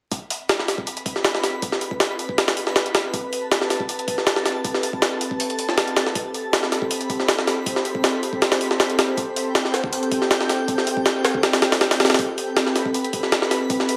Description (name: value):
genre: drum and bass, jungle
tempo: 159 BPM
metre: 4/4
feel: straight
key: A minor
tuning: A4 = 440 Hz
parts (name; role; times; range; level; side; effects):
- lush unison pad; sustained chords; 0.9-14.0 s; C4 to C5; -28 LUFS; equal; chorus
- jungle sampler-style drum kit; drums; 0.1-14.0 s; hi-hat, kick drum, snare drum; -23 LUFS; equal; high-pass filter on hats, high-pass filter on kick, high-pass filter on snare, high-pass filter on room
- twinkling granular texture; texture; 0.6-14.0 s; B4 to B5; -35 LUFS; equal; built-in reverb
room: light reverb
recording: vinyl crackle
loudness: -22 LUFS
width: mono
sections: 0.1-14.0 A section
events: none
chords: 0.1 Am9